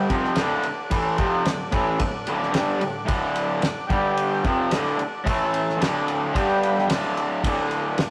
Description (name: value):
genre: garage rock duo or trio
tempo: 110 BPM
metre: 4/4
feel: straight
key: D major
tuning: A4 = 438 Hz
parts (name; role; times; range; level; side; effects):
- combo organ; sustained chords; 0.0-8.1 s; G4 to B5; -33 LUFS; equal; none
- raw garage guitar; riff; 0.0-8.0 s; D2 to A3; -25 LUFS; equal; overdrive
- cloth-damped thuddy drum kit; drums; 0.1-8.1 s; kick drum, ride cymbal, snare drum; -30 LUFS; equal; none
room: moderate stone room reverb, RT60 1.2 s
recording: rough rehearsal-room recording, warm saturation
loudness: -23 LUFS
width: mono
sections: 0.0-8.1 A section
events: transistor combo organ fill 6.3-7.4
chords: 0.1 D; 3.9 G5; 4.4 D; 5.3 A5; 5.8 D; 6.3 G5; 6.9 D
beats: 0.37 | 0.91 1.46 2.00 2.54 | 3.09 3.63 4.17 4.72 | 5.26 5.80 6.34 6.89 | 7.43 7.97